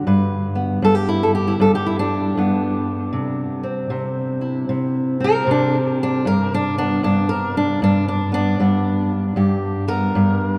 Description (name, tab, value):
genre	acoustic country blues, solo or duo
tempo	78 BPM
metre	4/4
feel	swing 64% on 8ths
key	G major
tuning	A4 = 439 Hz
part	fingerpicked steel-string acoustic guitar	solo	0.0-10.6 s	G2 to B4	-19 LUFS	equal	none
room	wet cathedral reverb, RT60 6.4 s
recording	in a vast, echoing space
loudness	-20 LUFS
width	mono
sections	0.1-10.6 A section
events	steel-string acoustic guitar solo 0.1-10.6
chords	0.1 G; 3.2 C; 6.3 G